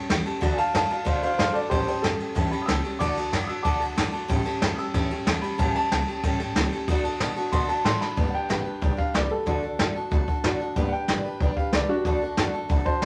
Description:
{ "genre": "rockabilly", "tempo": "186 BPM", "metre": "4/4", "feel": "straight", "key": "D major", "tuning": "A4 = 440 Hz", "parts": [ { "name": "picked steel-string acoustic guitar", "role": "accompaniment", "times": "0.0-13.1 s", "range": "A2 to B4", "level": "-31 LUFS", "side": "equal", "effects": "none" }, { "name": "upright bass", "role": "bass", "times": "0.1-13.1 s", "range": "G1 to B2", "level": "-33 LUFS", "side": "equal", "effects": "none" }, { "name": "jazz brush drum kit", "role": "drums", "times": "0.1-13.1 s", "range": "hi-hat, kick drum, ride cymbal, snare drum", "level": "-29 LUFS", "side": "equal", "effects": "none" }, { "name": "dark upright piano", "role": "melody", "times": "0.5-13.0 s", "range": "D4 to E6", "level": "-30 LUFS", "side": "equal", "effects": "none" } ], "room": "moderate club reverb, RT60 0.7 s", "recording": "none", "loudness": "-25 LUFS", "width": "mono", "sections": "0.0-8.2 A section; 8.2-13.1 B section", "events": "upright piano solo 0.0-8.2; drum fill 8.0", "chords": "0.4 D; 1.7 A7; 3.0 D; 4.3 A7; 6.9 D; 8.2 G; 9.5 D; 10.8 G; 12.1 D" }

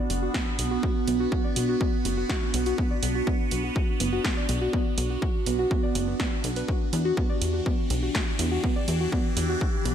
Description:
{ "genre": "melodic techno", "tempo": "123 BPM", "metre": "4/4", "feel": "straight", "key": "B minor", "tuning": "A4 = 439 Hz", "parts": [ { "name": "evolving wavetable pad", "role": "sustained chords", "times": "0.0-9.9 s", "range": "E3 to G4", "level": "-30 LUFS", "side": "right 2 dB", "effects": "phaser, built-in reverb, sidechain pumping" }, { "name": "soft round pluck", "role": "arpeggios", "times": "0.0-9.9 s", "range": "B3 to D5", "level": "-30 LUFS", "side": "equal", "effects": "chorus, sidechain pumping, tape echo" }, { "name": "plucky analog bass", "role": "bass", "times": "0.1-9.9 s", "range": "F#1 to E2", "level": "-28 LUFS", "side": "equal", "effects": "sidechain pumping" }, { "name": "punchy analog drum machine", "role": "drums", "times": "0.1-9.9 s", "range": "hi-hat, snare drum", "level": "-32 LUFS", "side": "right 2 dB", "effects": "sidechain pumping on hats" }, { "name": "electronic kick drum", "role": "drums", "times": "0.3-9.7 s", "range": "none", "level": "-27 LUFS", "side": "equal", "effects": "overdrive" } ], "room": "moderate lush hall reverb, RT60 1.9 s", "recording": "dreamy mix soaked in reverb, faint mains hum", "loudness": "-23 LUFS", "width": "side -9 dB against mid", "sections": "0.0-9.9 A section", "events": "none", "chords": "0.0 Bm; 6.7 Em7" }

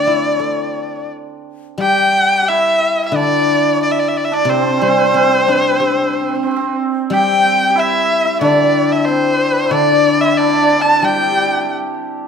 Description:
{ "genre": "chinese traditional, Chinese chamber ensemble", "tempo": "91 BPM", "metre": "4/4", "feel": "rubato", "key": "D shang mode", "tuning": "A4 = 440 Hz", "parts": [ { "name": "warm erhu", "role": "melody", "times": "0.0-11.7 s", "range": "C5 to A5", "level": "-16 LUFS", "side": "equal", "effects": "none" }, { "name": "hammered dulcimer", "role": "second line", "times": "0.0-12.3 s", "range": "C4 to G4", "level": "-18 LUFS", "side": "right 5 dB", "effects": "none" }, { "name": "hollow xiao", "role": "second line", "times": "0.0-11.7 s", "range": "C5 to D6", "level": "-19 LUFS", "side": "left 5 dB", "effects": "none" }, { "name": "guzheng", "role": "accompaniment", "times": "0.0-12.3 s", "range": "C3 to A4", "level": "-20 LUFS", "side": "left 6 dB", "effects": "none" } ], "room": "moderate recital hall reverb, RT60 1.5 s", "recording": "none", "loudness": "-12 LUFS", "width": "side -6 dB against mid", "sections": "0.0-1.8 A section; 1.8-12.3 B section", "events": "none", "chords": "none" }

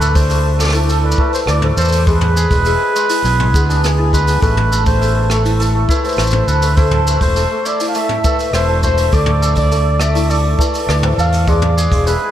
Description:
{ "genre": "folktronica", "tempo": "102 BPM", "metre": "4/4", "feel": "straight", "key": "A harmonic minor", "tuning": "A4 = 439 Hz", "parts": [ { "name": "mellow flugelhorn", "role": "melody", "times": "0.0-12.3 s", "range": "G#4 to F5", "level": "-19 LUFS", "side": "equal", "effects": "tape echo" }, { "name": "cimbalom", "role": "arpeggios", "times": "0.0-12.3 s", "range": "G#3 to D5", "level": "-21 LUFS", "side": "right 1 dB", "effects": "tape echo" }, { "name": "overdriven fingered electric bass", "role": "bass", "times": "0.0-12.1 s", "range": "E1 to E2", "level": "-15 LUFS", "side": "equal", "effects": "tube saturation" }, { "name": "vintage brush drum kit", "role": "drums", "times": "0.0-12.2 s", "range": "hi-hat, rim click, shaker, toms", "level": "-23 LUFS", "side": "right 1 dB", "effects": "none" }, { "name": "kick drum", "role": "drums", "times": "0.2-12.0 s", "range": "none", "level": "-16 LUFS", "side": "equal", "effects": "none" }, { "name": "celesta", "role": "second line", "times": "0.3-12.3 s", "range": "E4 to C5", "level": "-22 LUFS", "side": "left 2 dB", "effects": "ensemble chorus, tape echo" } ], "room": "light reverb, small room ambience", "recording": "none", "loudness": "-12 LUFS", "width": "side -11 dB against mid", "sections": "0.0-12.3 A section", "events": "none", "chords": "0.0 D5; 2.1 E7; 4.4 Amadd9; 9.1 D5; 11.5 E7" }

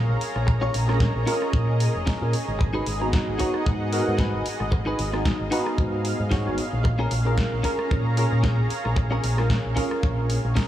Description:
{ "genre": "nu-disco, nu disco", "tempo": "113 BPM", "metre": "4/4", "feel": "swing 55% on 16ths", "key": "unclear", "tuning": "A4 = 439 Hz", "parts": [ { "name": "lush unison pad", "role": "sustained chords", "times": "0.0-10.7 s", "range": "G#4 to A#5", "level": "-31 LUFS", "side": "equal", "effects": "chorus, vintage 12-bit sampler grit, sidechain pumping" }, { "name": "direct-recorded clean electric guitar", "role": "riff", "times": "0.0-10.7 s", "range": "C#4 to C#5", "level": "-32 LUFS", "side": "left 1 dB", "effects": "lush chorus, diffuse ambient delay" }, { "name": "fingered electric bass with an envelope filter", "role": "bass", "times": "0.0-10.5 s", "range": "E#1 to A#2", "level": "-24 LUFS", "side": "equal", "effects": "none" }, { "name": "house drum kit", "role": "drums", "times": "0.2-10.7 s", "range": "hi-hat, rim click, snare drum", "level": "-34 LUFS", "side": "equal", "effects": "none" }, { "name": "kick drum", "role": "drums", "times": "0.5-10.7 s", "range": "none", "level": "-24 LUFS", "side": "equal", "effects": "none" }, { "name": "tine electric piano", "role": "accompaniment", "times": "0.9-10.4 s", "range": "B3 to A#5", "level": "-29 LUFS", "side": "right 1 dB", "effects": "ensemble chorus, sidechain pumping, diffuse ambient delay" } ], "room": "light reverb, small room reverb", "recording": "small room ambience", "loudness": "-21 LUFS", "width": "side -12 dB against mid", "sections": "0.0-10.7 A section", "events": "none", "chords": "0.0 A#m7; 2.6 G#m7; 6.8 A#m7" }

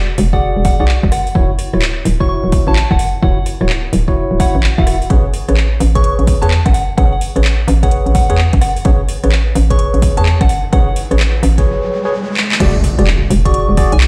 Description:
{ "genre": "UK garage, two-step garage", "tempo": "128 BPM", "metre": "4/4", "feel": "swing 64% on 16ths", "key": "A major", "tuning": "A4 = 440 Hz", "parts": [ { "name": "hollow knocking FM bass", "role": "bass", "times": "0.0-14.1 s", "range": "D1 to E2", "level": "-16 LUFS", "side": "equal", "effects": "none" }, { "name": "house drum kit", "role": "drums", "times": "0.2-14.1 s", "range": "crash cymbal, handclaps, hi-hat, rim click", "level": "-24 LUFS", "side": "equal", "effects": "overdrive" }, { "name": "soft synth bell", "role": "melody", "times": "0.3-14.1 s", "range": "F#5 to C#6", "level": "-24 LUFS", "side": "equal", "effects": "chorus, tape echo" }, { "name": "tine electric piano", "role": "stabs", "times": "0.3-13.9 s", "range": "E4 to E5", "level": "-23 LUFS", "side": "equal", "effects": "tape echo" }, { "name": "electronic kick drum", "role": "drums", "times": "0.3-13.9 s", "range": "none", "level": "-17 LUFS", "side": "equal", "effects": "overdrive" }, { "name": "riser and impact", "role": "sound effects", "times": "10.5-14.1 s", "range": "none", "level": "-24 LUFS", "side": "equal", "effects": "none" } ], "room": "light reverb", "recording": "played on a big sound system in a bare room, large studio reverb", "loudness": "-13 LUFS", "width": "mono", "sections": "0.0-12.6 A section; 12.6-14.1 B section", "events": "riser 10.5-12.6; drum fill 12.4; drop 12.6-14.1; impact 12.6-14.1", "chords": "0.0 E7; 1.1 Dmaj7; 5.1 Amaj9; 12.6 E7" }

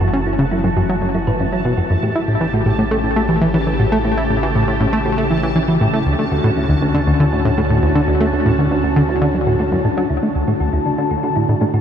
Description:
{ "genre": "ambient, sequencer-driven space music", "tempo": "119 BPM", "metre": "4/4", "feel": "straight", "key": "unclear", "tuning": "A4 = 440 Hz", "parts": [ { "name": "phased analog pad", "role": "sustained chords", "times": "0.0-11.8 s", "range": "C#3 to G4", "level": "-21 LUFS", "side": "equal", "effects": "phaser, chorus, shimmer reverb" }, { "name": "thumb-piano-like synth pluck", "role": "arpeggios", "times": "0.0-11.8 s", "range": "C#4 to B4", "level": "-25 LUFS", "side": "right 2 dB", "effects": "chorus, auto-pan, ping-pong delay, shimmer reverb" }, { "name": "plucky analog bass", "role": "riff", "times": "0.0-11.8 s", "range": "D2 to E4", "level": "-17 LUFS", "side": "equal", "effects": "ping-pong delay" }, { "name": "warm sub bass", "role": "bass", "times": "0.0-10.1 s", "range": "F#1 to D2", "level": "-25 LUFS", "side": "equal", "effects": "none" }, { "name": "bubbling stepped-filter texture", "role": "texture", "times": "0.0-11.8 s", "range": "A5", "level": "-26 LUFS", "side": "right 1 dB", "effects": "chorus, built-in reverb, shimmer reverb" } ], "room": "moderate huge ambient reverb, RT60 8.1 s", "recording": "dark, warm production", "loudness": "-14 LUFS", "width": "side -8 dB against mid", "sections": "0.0-10.1 A section; 10.1-11.8 B section", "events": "fade-in on analog synth pad 0.0-10.1", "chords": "0.0 F#m7; 2.0 A7; 6.1 Dmaj7; 10.1 D" }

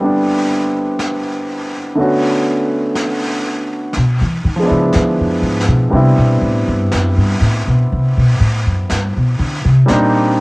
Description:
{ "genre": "jazz ballad", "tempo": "61 BPM", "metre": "4/4", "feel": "swing 68% on 8ths", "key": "unclear", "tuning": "A4 = 440 Hz", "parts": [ { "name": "clear baby grand piano", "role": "accompaniment", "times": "0.0-10.4 s", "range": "D3 to F#4", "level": "-16 LUFS", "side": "equal", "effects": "cassette tape" }, { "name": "brushed snare drum and snare drum", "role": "drums", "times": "0.0-10.4 s", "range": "none", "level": "-25 LUFS", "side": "equal", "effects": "cassette tape" }, { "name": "upright bass", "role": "bass", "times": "4.0-10.4 s", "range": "F2 to E3", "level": "-13 LUFS", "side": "equal", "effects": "none" } ], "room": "little or no reverb", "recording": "home recording on cassette", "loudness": "-12 LUFS", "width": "side -26 dB against mid", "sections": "0.0-10.4 A section", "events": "upright bass solo 0.0-10.4", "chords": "0.0 Cmaj7; 2.0 Bm9; 3.9 E7b9; 5.9 Am11; 9.9 Cm7" }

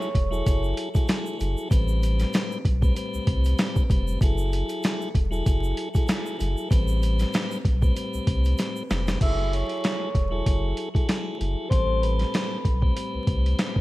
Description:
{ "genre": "hip hop, boom-bap hip-hop", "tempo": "96 BPM", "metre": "4/4", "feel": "swing 56% on 16ths", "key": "unclear", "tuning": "A4 = 440 Hz", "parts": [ { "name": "vibraphone with soft mallets", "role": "melody", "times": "0.0-0.6, 9.2-13.1 s", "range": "B4 to E6", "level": "-31 LUFS", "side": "right 1 dB", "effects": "high-pass filter, low-pass filter, tape echo" }, { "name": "tonewheel organ", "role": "accompaniment", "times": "0.0-13.8 s", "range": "A2 to B4", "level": "-30 LUFS", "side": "left 1 dB", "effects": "stopped rotary speaker, cassette tape, high-pass filter, low-pass filter" }, { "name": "egg shaker", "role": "percussion", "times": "0.0-9.2 s", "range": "none", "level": "-50 LUFS", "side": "right 6 dB", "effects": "none" }, { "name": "boom bap sampler-style drum kit", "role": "drums", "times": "0.1-13.8 s", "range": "crash cymbal, hi-hat, kick drum, snare drum", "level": "-24 LUFS", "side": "equal", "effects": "none" }, { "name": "warm sub bass", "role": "bass", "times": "0.2-13.5 s", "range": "E1 to C2", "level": "-24 LUFS", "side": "equal", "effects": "none" } ], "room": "light reverb", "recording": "vinyl crackle", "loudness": "-22 LUFS", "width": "side -18 dB against mid", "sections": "0.0-9.2 A section; 9.2-13.8 B section", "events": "drum fill 8.6-9.2", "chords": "0.0 F#m9; 1.7 Am9; 4.2 F#m9; 6.7 Am9; 9.2 F#m9; 11.7 Am9" }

